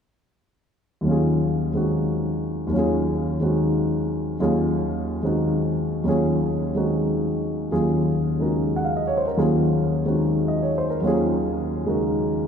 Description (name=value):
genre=jazz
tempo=144 BPM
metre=4/4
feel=swing 66% on 8ths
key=Eb dorian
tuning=A4 = 440 Hz
part: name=dark baby grand piano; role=accompaniment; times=1.0-12.5 s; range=Eb2 to Gb5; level=-20 LUFS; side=equal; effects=none
room=wet church reverb, RT60 3.4 s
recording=recorded in a church or concert hall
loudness=-20 LUFS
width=side -7 dB against mid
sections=1.1-12.5 A section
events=none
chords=1.1 Ebm11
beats=| 1.06 1.48 1.89 2.31 | 2.73 3.14 3.56 3.97 | 4.39 4.80 5.22 5.64 | 6.05 6.47 6.89 7.30 | 7.72 8.14 8.55 8.97 | 9.38 9.80 10.22 10.63 | 11.05 11.47 11.88 12.30